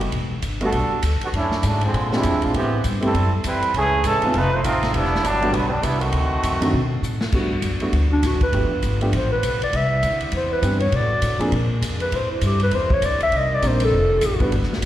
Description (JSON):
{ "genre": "jazz, big band swing", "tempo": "200 BPM", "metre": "4/4", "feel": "swing 60% on 8ths", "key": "G major", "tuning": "A4 = 440 Hz", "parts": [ { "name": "upright bass", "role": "bass", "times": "0.0-14.9 s", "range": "E1 to B2", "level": "-22 LUFS", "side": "equal", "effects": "none" }, { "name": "swinging big-band drum kit", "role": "drums", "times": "0.0-14.9 s", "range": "crash cymbal, hi-hat, kick drum, ride cymbal, snare drum", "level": "-27 LUFS", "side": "equal", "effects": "none" }, { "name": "clear trombone section", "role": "second line", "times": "0.6-7.0 s", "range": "C#3 to C5", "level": "-21 LUFS", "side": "right 2 dB", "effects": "plate reverb, slapback echo" }, { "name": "warm grand piano", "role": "accompaniment", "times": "0.6-11.5, 13.6-14.5 s", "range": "Eb3 to B4", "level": "-25 LUFS", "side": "right 1 dB", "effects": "plate reverb, slapback echo" }, { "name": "edgy saxophone section", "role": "sustained chords", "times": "7.3-14.9 s", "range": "C3 to F#4", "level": "-32 LUFS", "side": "left 1 dB", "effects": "plate reverb" }, { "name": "mellow clarinet", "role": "melody", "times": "8.1-14.5 s", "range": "D4 to E5", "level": "-21 LUFS", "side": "left 1 dB", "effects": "plate reverb, slapback echo" } ], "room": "moderate club reverb, RT60 0.5 s", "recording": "live gig heard through the venue's PA, recital hall reverb", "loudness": "-18 LUFS", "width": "side -13 dB against mid", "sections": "0.0-7.3 A section; 7.3-14.9 B section", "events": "trombone section solo 0.0-7.3; drum fill 7.0; clarinet solo 7.3-14.9", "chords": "0.1 Em11; 1.3 Dmaj9#11/F#; 1.9 Bb13; 2.5 Am9; 3.7 Amaj9#11; 4.3 F7; 4.9 Em9; 6.1 D7b9; 7.3 Gmaj7; 8.5 G7; 9.7 Cmaj7; 10.9 Bm7; 11.5 Bb9; 12.1 Am7; 13.3 Cm7; 13.9 F9" }